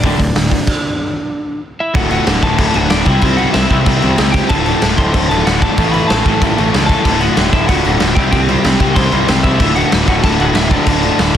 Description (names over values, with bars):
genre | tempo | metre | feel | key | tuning
punk rock | 188 BPM | 4/4 | straight | D mixolydian | A4 = 440 Hz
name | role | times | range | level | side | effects
lightly driven lead guitar | melody | 0.0-11.4 s | D4 to C6 | -20 LUFS | equal | none
overdriven semi-hollow guitar | riff | 0.0-11.3 s | D2 to C4 | -15 LUFS | left 1 dB | none
fuzz picked electric bass | bass | 0.0-11.4 s | D1 to C#2 | -18 LUFS | equal | overdrive
raw garage drum kit | drums | 0.0-11.4 s | crash cymbal, hi-hat, kick drum, snare drum | -15 LUFS | equal | none
room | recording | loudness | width
little or no reverb | dense, heavily limited modern master | -11 LUFS | side -10 dB against mid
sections
0.0-2.0 A section; 2.0-11.4 B section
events
stop 0.7-2.0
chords
0.0 D5; 2.0 D; 3.1 C; 4.5 D; 5.8 A; 7.1 D; 8.2 C; 9.6 D